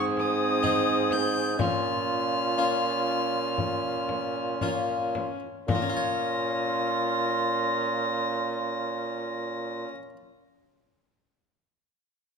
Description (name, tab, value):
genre	classical, renaissance-style consort dance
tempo	55-65 BPM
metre	4/4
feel	straight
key	Bb minor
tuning	A4 = 440 Hz
part	warm violin	melody	0.0-9.9 s	Eb6 to Bb6	-33 LUFS	left 6 dB	none
part	mellow cor anglais	second line	0.0-9.9 s	F4 to Ab4	-31 LUFS	right 4 dB	none
part	harpsichord	accompaniment	0.0-10.2 s	Ab2 to Db5	-32 LUFS	left 4 dB	none
part	warm viola	accompaniment	0.0-9.9 s	C4 to Db4	-34 LUFS	left 1 dB	none
part	mellow bassoon	bass	0.0-9.9 s	Ab2 to Bb2	-30 LUFS	right 2 dB	none
part	frame drum	percussion	0.2-6.2 s	none	-33 LUFS	left 5 dB	none
room	moderate recital hall reverb, RT60 1.6 s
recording	none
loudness	-25 LUFS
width	side -5 dB against mid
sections	0.0-5.7 A section; 5.7-10.0 B section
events	slowing down 0.0-5.7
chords	0.0 Ab; 1.6 Bbm